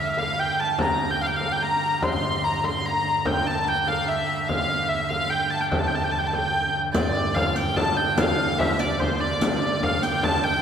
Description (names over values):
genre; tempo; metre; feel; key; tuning
medieval dance; 146 BPM; 3/4; straight; G dorian; A4 = 439 Hz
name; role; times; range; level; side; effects
clear hurdy-gurdy; melody; 0.0-10.6 s; C5 to C6; -23 LUFS; equal; none
pipe organ, foundations; drone; 0.0-10.6 s; G2 to D3; -31 LUFS; right 3 dB; none
frame drum; percussion; 0.2-10.4 s; none; -27 LUFS; left 1 dB; none
riq; percussion; 6.9-10.2 s; none; -32 LUFS; right 1 dB; none
room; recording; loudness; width
wet church reverb, RT60 3.9 s; recorded in a church or concert hall; -21 LUFS; side -8 dB against mid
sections
0.0-7.0 A section; 7.0-10.6 B section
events
none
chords
none